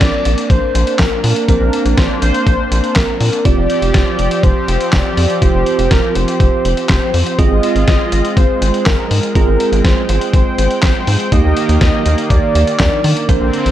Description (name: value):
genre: synth-pop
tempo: 122 BPM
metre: 4/4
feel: straight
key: Bb mixolydian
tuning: A4 = 436 Hz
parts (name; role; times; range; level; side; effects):
- warm velvety synth lead; melody; 0.0-13.7 s; Bb4 to Eb5; -18 LUFS; equal; chorus
- bell-like tine electric piano; accompaniment; 0.0-13.7 s; Bb3 to C5; -21 LUFS; right 9 dB; medium stereo tremolo
- brassy analog pad; sustained chords; 0.0-13.7 s; D3 to G5; -21 LUFS; left 2 dB; chorus
- rubbery square bass; bass; 0.0-13.7 s; F1 to Eb3; -15 LUFS; equal; none
- lo-fi sampler-style drum kit; drums; 0.0-13.7 s; handclaps, hi-hat, kick drum, snare drum; -15 LUFS; equal; none
room: light reverb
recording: none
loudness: -11 LUFS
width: side -12 dB against mid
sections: 0.0-13.7 A section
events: none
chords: 0.0 Bbadd9; 3.5 Fsus2; 7.4 Ab6; 11.3 Ebmaj7